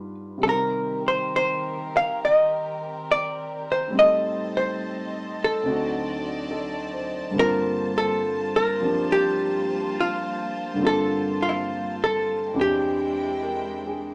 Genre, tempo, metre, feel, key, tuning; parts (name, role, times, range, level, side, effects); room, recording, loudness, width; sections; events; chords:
jazz ballad; 69 BPM; 4/4; swing 69% on 8ths; G minor; A4 = 440 Hz
archtop guitar, miked and amplified; melody; 0.0-14.0 s; E4 to F5; -25 LUFS; equal
warm grand piano; accompaniment; 0.0-14.1 s; D2 to C5; -31 LUFS; equal
warm chamber string section; sustained chords; 0.4-14.1 s; Eb3 to A5; -36 LUFS; equal
moderate studio reverb, RT60 0.6 s; -24 LUFS; mono
0.0-14.1 A section
0.4 Cm7; 3.9 Am7b5; 5.6 D7b9; 7.4 Gm11; 12.5 E7alt